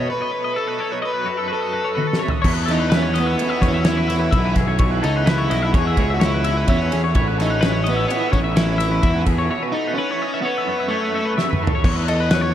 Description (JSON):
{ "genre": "math rock and midwest emo", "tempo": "128 BPM", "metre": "5/4", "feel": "straight", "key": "unclear", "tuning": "A4 = 440 Hz", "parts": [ { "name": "overdriven electric guitar", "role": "melody", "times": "0.0-12.5 s", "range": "A3 to D#5", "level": "-24 LUFS", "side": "left 1 dB", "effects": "analog delay" }, { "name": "clean electric guitar", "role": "accompaniment", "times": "0.0-12.5 s", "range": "E2 to F#4", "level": "-28 LUFS", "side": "right 8 dB", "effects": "tremolo" }, { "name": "twelve-string electric guitar", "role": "arpeggios", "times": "0.0-12.5 s", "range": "F#4 to E5", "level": "-25 LUFS", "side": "left 4 dB", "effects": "wide subtle chorus, analog delay" }, { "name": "fuzz picked electric bass", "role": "bass", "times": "0.0-12.5 s", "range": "A1 to E2", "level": "-21 LUFS", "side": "equal", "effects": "overdrive" }, { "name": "loose indie drum kit", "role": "drums", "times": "2.0-12.4 s", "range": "crash cymbal, kick drum, ride cymbal, snare drum, toms", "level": "-21 LUFS", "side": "equal", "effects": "none" } ], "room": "moderate huge ambient reverb, RT60 4.8 s", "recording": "dreamy mix soaked in reverb", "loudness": "-17 LUFS", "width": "side -11 dB against mid", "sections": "0.0-2.4 A section; 2.4-11.8 B section", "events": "drum fill 2.0-2.4, 11.4-11.8; break 9.5-11.8", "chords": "0.0 B7; 2.4 E5; 7.1 Amaj9; 9.5 B9sus4; 11.8 E5", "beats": "| 0.10 0.57 1.04 1.51 1.98 | 2.45 2.92 3.39 3.86 4.33 | 4.80 5.27 5.74 6.21 6.68 | 7.15 7.62 8.09 8.56 9.03 | 9.49 9.96 10.43 10.90 11.37 | 11.84 12.30" }